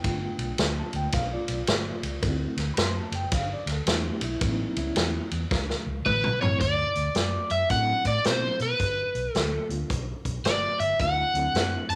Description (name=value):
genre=electric blues shuffle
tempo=110 BPM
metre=4/4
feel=swing 64% on 8ths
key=D mixolydian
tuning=A4 = 440 Hz
part: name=mellow reed electric piano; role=accompaniment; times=0.0-12.0 s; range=D2 to C6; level=-36 LUFS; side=equal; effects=fast tremolo
part: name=vintage muted fingered electric bass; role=bass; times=0.0-12.0 s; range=F#1 to B2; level=-33 LUFS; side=equal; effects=none
part: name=swinging big-band drum kit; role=drums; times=0.0-12.0 s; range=hi-hat, kick drum, ride cymbal, snare drum, toms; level=-31 LUFS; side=equal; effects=none
part: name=crunchy overdriven guitar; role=melody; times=6.1-12.0 s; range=B4 to A5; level=-27 LUFS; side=equal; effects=none
room=light reverb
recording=none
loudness=-26 LUFS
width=mono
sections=0.0-6.6 A section; 6.6-12.0 B section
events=drum fill 5.5-6.6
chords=0.0 G7; 2.2 D7; 3.3 G; 4.4 A7; 6.6 D7; 8.8 G; 11.0 D7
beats=| 0.04 0.59 1.14 1.68 | 2.23 2.78 3.32 3.87 | 4.42 4.96 5.51 6.06 | 6.61 7.16 7.71 8.25 | 8.80 9.35 9.90 10.45 | 11.00 11.55